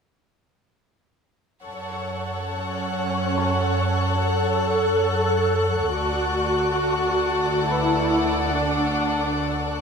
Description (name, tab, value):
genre	cinematic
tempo	70 BPM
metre	5/4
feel	straight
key	F# minor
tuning	A4 = 441 Hz
part	warm chamber violin section	melody	1.6-9.8 s	F#5	-32 LUFS	equal	none
part	warm symphonic violin section	second line	1.6-9.8 s	A4 to D5	-27 LUFS	left 2 dB	none
part	warm symphonic violin section	texture	1.6-9.8 s	C#6 to F#6	-33 LUFS	left 5 dB	none
part	warm symphonic double bass section	bass	1.7-9.8 s	D2 to F#2	-27 LUFS	right 3 dB	none
part	dark symphonic viola section	accompaniment	2.5-9.8 s	C#4 to A4	-23 LUFS	equal	none
part	warm concert grand piano	texture	3.4-9.8 s	B4 to C#6	-35 LUFS	left 2 dB	none
room	light reverb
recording	close, detailed microphones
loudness	-20 LUFS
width	side -6 dB against mid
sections	1.7-9.8 A section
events	none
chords	1.7 F#m; 6.0 D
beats	| 1.67 2.53 3.38 4.24 5.10 | 5.96 6.81 7.67 8.53 9.38